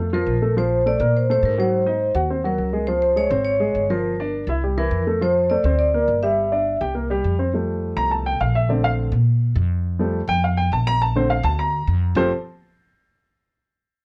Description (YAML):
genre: Afro-Cuban jazz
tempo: 207 BPM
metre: 4/4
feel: straight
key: F major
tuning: A4 = 443 Hz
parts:
  - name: warm baby grand piano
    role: accompaniment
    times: 0.0-12.3 s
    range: D3 to Bb5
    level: -25 LUFS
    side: equal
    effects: none
  - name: upright bass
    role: bass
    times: 0.0-12.3 s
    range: F1 to Bb2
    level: -25 LUFS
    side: equal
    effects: none
  - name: vibraphone with medium hard mallets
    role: melody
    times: 0.1-6.8 s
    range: Bb4 to E5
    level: -23 LUFS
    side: equal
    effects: plate reverb
room: moderate studio reverb, RT60 0.5 s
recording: worn, warbling old tape, cassette tape, warbly pitch drift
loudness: -20 LUFS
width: mono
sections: 0.0-7.5 A section; 7.5-12.2 B section; 12.2-13.3 C section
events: grand piano solo 7.5-12.2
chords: 0.0 F; 0.6 Bbmaj7; 1.7 Ab9; 2.9 Dbmaj7; 4.0 Gm7; 4.6 C7; 5.2 F6; 5.8 Gmadd11; 6.4 G5; 7.0 C5; 7.5 Fadd9; 8.7 Bbmaj7; 9.9 Fadd9; 11.0 Bbmaj7; 12.2 Fadd9